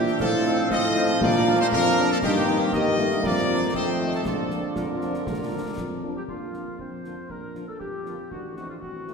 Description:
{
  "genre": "military-style march for wind band",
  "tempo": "118 BPM",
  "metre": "2/4",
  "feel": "straight",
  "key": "Bb major",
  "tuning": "A4 = 440 Hz",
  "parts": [
    { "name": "bright trumpet section", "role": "melody", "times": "0.0-9.1 s", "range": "Eb4 to Eb5", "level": "-28 LUFS", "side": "equal", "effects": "none" },
    { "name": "clear euphonium", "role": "second line", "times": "0.0-9.1 s", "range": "A3 to Eb4", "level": "-32 LUFS", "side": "right 1 dB", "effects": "none" },
    { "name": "mellow woodwind section", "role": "second line", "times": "0.0-9.1 s", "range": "F4 to F5", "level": "-30 LUFS", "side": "left 3 dB", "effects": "none" },
    { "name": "dark French horn section", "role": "accompaniment", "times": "0.0-9.1 s", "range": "D3 to Eb4", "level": "-34 LUFS", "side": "left 3 dB", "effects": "none" },
    { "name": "bright trombone section", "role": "sustained chords", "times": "0.0-6.0 s", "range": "D3 to D4", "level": "-29 LUFS", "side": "right 1 dB", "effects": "none" },
    { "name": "mellow tuba", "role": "bass", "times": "0.0-9.1 s", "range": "A1 to Bb2", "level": "-27 LUFS", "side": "right 1 dB", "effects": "none" },
    { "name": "concert snare drum, clash cymbals and concert bass drum", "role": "drums", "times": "0.1-9.1 s", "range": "none", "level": "-32 LUFS", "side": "left 1 dB", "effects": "none" }
  ],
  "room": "wet concert hall reverb, RT60 2.5 s",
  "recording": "minimal, uncompressed stereo recording",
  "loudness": "-21 LUFS",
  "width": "side -5 dB against mid",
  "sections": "0.0-6.3 A section; 6.3-9.1 A section",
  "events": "none",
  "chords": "0.2 F7/A; 1.2 Bb; 2.2 Eb/G; 3.2 Bb/F; 3.7 F7; 4.3 Bb; 8.3 Adim7"
}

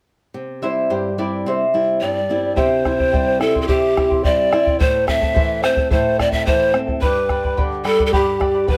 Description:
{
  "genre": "andean folk, Andean ensemble",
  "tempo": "108 BPM",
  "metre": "2/4",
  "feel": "straight",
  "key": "unclear",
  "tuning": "A4 = 440 Hz",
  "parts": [
    { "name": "flamenco guitar", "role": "accompaniment", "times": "0.3-8.8 s", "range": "G2 to E4", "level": "-27 LUFS", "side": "equal", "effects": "none" },
    { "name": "charango", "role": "accompaniment", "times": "0.6-8.8 s", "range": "E4 to B5", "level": "-24 LUFS", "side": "equal", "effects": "none" },
    { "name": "breathy hollow large pan pipes", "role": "melody", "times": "2.0-8.8 s", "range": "G4 to E5", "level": "-20 LUFS", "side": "equal", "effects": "plate reverb" },
    { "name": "bombo", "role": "percussion", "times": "2.6-8.8 s", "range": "none", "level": "-24 LUFS", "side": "equal", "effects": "none" }
  ],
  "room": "moderate studio reverb, RT60 0.6 s",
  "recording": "none",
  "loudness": "-18 LUFS",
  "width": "mono",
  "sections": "0.3-2.6 A section; 2.6-8.8 B section",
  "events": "charango solo 0.3-2.6",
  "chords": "0.3 C; 4.8 Am; 7.0 G"
}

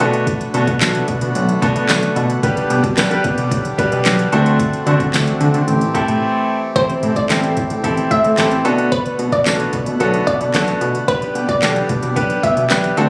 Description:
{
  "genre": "dance-pop",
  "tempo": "111 BPM",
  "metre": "4/4",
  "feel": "straight",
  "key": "A dorian",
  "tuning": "A4 = 438 Hz",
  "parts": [
    { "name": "bright concert grand piano", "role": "accompaniment", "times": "0.0-13.1 s", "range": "G3 to B4", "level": "-22 LUFS", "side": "equal", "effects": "sidechain pumping" },
    { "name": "hand-pumped harmonium", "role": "sustained chords", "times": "0.0-13.1 s", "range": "D3 to G4", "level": "-25 LUFS", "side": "equal", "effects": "sidechain pumping" },
    { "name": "chorused synth bass", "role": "bass", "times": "0.0-13.1 s", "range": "A1 to D3", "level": "-21 LUFS", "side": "equal", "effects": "sidechain pumping" },
    { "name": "smooth R&B drum kit", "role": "drums", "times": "0.0-13.1 s", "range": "handclaps, hi-hat, kick drum, snare drum", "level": "-23 LUFS", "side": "equal", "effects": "none" },
    { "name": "tambourine", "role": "percussion", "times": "0.8-12.8 s", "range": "none", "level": "-29 LUFS", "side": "equal", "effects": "none" },
    { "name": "glassy wavetable pluck", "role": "melody", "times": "6.8-12.8 s", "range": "B4 to E5", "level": "-22 LUFS", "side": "equal", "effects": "chorus, digital delay" }
  ],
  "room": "light reverb, small room reverb",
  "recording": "recorded on a phone in the room, club reverb, compression",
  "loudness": "-17 LUFS",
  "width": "mono",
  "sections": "0.0-6.8 A section; 6.8-13.1 B section",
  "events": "break 6.2-6.8",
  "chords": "0.0 Bm7; 2.4 G/B; 4.3 D7; 5.7 Am7; 8.6 Bm7; 11.1 G/B"
}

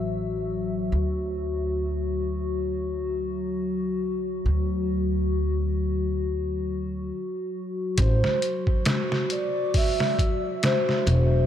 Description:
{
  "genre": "trip hop",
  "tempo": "68 BPM",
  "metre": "4/4",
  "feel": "swing 57% on 16ths",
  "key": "A dorian",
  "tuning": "A4 = 441 Hz",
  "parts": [
    { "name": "pure breathy sine lead", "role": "melody", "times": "0.0-0.5, 8.0-11.5 s", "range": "C5 to E5", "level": "-29 LUFS", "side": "right 1 dB", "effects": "lush chorus, tape echo" },
    { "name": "warbly tape-like pad", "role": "sustained chords", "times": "0.0-11.5 s", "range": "F#3 to F#4", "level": "-28 LUFS", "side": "left 2 dB", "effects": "chorus, built-in reverb" },
    { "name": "upright bass", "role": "bass", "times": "0.0-11.5 s", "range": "E1 to D2", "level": "-26 LUFS", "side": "equal", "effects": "none" },
    { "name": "trip hop sampler-style drum kit", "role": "drums", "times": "8.0-11.3 s", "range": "hi-hat, kick drum, snare drum", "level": "-25 LUFS", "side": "equal", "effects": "none" }
  ],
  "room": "moderate huge ambient reverb, RT60 8.5 s",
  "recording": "dreamy mix soaked in reverb",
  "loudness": "-23 LUFS",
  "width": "side -10 dB against mid",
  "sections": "0.0-8.0 A section; 8.0-11.5 B section",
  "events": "none",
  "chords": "0.0 A5; 0.9 D; 8.0 Am (rootless)"
}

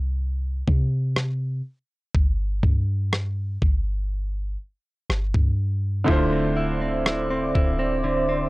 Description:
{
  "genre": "contemporary R&B",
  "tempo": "61 BPM",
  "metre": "4/4",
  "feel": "straight",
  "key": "D minor",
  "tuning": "A4 = 443 Hz",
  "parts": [
    { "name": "clean 808-style bass", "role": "bass", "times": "0.0-8.5 s", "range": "D1 to C3", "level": "-25 LUFS", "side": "equal", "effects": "none" },
    { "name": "dusty soul sampler-style drum kit", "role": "drums", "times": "0.7-7.8 s", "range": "kick drum, rim click", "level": "-21 LUFS", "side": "equal", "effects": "none" },
    { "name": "bright baby grand piano", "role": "accompaniment", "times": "6.0-8.5 s", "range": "D3 to C5", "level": "-26 LUFS", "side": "right 1 dB", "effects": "none" },
    { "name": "hollow soft pad", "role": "sustained chords", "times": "6.1-8.5 s", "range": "C5 to D6", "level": "-28 LUFS", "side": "right 2 dB", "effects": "chorus, sidechain pumping" },
    { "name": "direct-recorded clean electric guitar", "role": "arpeggios", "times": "6.1-8.5 s", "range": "D3 to E4", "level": "-25 LUFS", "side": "equal", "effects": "spring reverb, tape echo" }
  ],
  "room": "little or no reverb",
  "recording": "dry, gritty hardware recording, transformer saturation, cassette tape",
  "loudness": "-21 LUFS",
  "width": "side -21 dB against mid",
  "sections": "0.0-8.5 A section",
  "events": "none",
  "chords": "0.0 N.C.; 6.1 Dm9"
}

